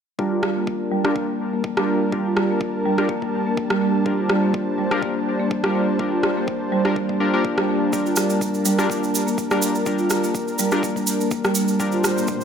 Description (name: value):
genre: afro house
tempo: 124 BPM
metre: 4/4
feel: swing 54% on 16ths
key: G minor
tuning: A4 = 440 Hz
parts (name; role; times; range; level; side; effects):
- warm analog pad; sustained chords; 0.2-12.4 s; G3 to A5; -24 LUFS; equal; chorus, sidechain pumping
- marimba with soft mallets; arpeggios; 0.2-12.3 s; G3 to F4; -24 LUFS; right 2 dB; sidechain pumping, low-pass filter, dub echo
- warm analog keys; stabs; 0.2-12.4 s; D4 to Bb4; -25 LUFS; left 2 dB; chorus, sidechain pumping, low-pass filter, dub echo
- electronic kick drum; drums; 0.2-12.4 s; none; -32 LUFS; left 1 dB; high-pass filter on kick, studio reverb
- electronic rim click; drums; 0.4-12.1 s; none; -26 LUFS; equal; studio reverb
- cabasa; percussion; 7.9-12.4 s; none; -28 LUFS; right 4 dB; none
- riser; sound effects; 12.0-12.4 s; none; -34 LUFS; left 4 dB; none
room: light reverb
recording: none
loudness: -19 LUFS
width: side -7 dB against mid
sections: 0.2-12.4 A section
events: filter sweep on synth keys 0.2-12.4; riser 12.0-12.4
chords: 0.2 Gm7